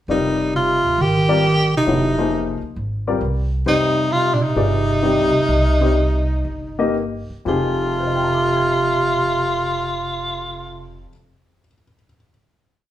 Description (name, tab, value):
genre	modal jazz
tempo	114-134 BPM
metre	4/4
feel	swing 68% on 8ths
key	F dorian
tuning	A4 = 440 Hz
part	breathy tenor saxophone	melody	0.1-11.1 s	D4 to G4	-19 LUFS	equal	none
part	mellow bass clarinet	second line	0.1-11.1 s	Bb2 to Eb3	-23 LUFS	right 2 dB	none
part	dark baby grand piano	accompaniment	0.1-12.3 s	F2 to C7	-22 LUFS	left 3 dB	none
part	upright bass	bass	0.1-11.0 s	E1 to Eb2	-24 LUFS	equal	none
room	wet large studio reverb, RT60 0.9 s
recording	band playing live in one room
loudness	-16 LUFS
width	side -12 dB against mid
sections	0.1-7.5 A section; 7.5-11.7 final chord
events	slowing down 3.7-7.5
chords	0.1 Fm9; 3.7 Cm; 7.5 Fm9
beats	| 0.09 0.53 0.98 1.43 | 1.87 2.32 2.77 3.22 | 3.67 4.12 4.57 5.03 | 5.49 5.97 6.46 6.96 | 7.47 8.00 8.52 9.04 | 9.56 10.09 10.61 11.13